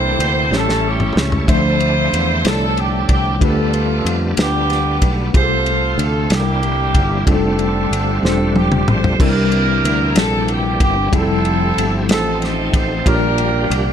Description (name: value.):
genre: slow gospel.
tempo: 62 BPM (dotted quarters).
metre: 6/8.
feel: straight.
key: F major.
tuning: A4 = 440 Hz.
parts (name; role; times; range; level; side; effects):
clear saxophone section; melody; 0.0-13.9 s; Bb3 to C#5; -19 LUFS; right 2 dB; none.
tine electric piano; accompaniment; 0.0-13.9 s; A2 to E5; -20 LUFS; left 2 dB; medium stereo tremolo.
bright tonewheel organ; sustained chords; 0.0-13.9 s; D3 to E5; -26 LUFS; right 2 dB; slow rotary speaker, chorus vibrato.
fingered electric bass; bass; 0.0-13.9 s; E1 to F2; -20 LUFS; equal; none.
warm soul drum kit; drums; 0.2-13.9 s; crash cymbal, kick drum, ride cymbal, snare drum, toms; -19 LUFS; equal; none.
room: light reverb.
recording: none.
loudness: -14 LUFS.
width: side -8 dB against mid.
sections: 0.0-9.2 A section; 9.2-13.9 A section.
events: drum fill 0.5-1.5, 8.2-9.2.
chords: 0.0 C13; 0.5 A7; 1.5 Dm9; 3.4 G9/D; 5.3 F/C; 6.3 C9; 7.3 F69; 9.2 C9; 11.1 Fmaj9; 12.1 F7/A; 13.1 Bb6.